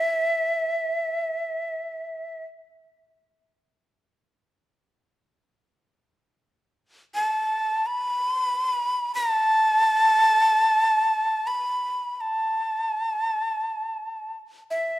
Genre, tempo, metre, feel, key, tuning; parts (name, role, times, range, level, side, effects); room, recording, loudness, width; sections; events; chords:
japanese traditional, Japanese chamber music; free time; A4 = 440 Hz
breathy bright shakuhachi; solo; 0.0-2.4, 7.1-15.0 s; E5 to B5; -22 LUFS; equal
moderate scoring stage reverb, RT60 1.7 s; dark, warm production; -21 LUFS; side -16 dB against mid
0.0-5.8 A section; 5.8-15.0 A section